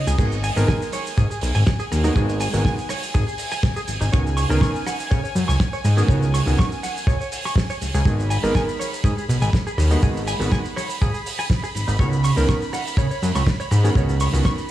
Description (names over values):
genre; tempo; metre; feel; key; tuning
nu-disco, nu disco; 122 BPM; 4/4; straight; G# minor; A4 = 437 Hz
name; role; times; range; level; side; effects
lush unison pad; sustained chords; 0.0-14.7 s; D#5 to B5; -32 LUFS; left 1 dB; chorus, sidechain pumping
fat analog bass; bass; 0.0-14.4 s; G#1 to C#3; -20 LUFS; equal; tube saturation
direct-recorded clean electric guitar; riff; 0.1-14.5 s; D#4 to C#6; -30 LUFS; right 1 dB; lush chorus, dub echo
damped 70s drum kit; drums; 0.1-14.7 s; crash cymbal, hi-hat, rim click, shaker, snare drum; -28 LUFS; right 2 dB; dub echo
warm electric grand piano; accompaniment; 0.2-14.6 s; D#3 to A#4; -26 LUFS; right 1 dB; dub echo
kick drum; drums; 0.2-14.6 s; none; -20 LUFS; equal; none
room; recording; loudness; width
light reverb, small room ambience; echo-heavy mix; -18 LUFS; side -13 dB against mid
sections
0.2-14.7 A section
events
break 0.0; drop 0.2-14.7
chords
0.2 G#m7; 4.1 C#9sus4; 8.1 G#m7; 12.0 C#9sus4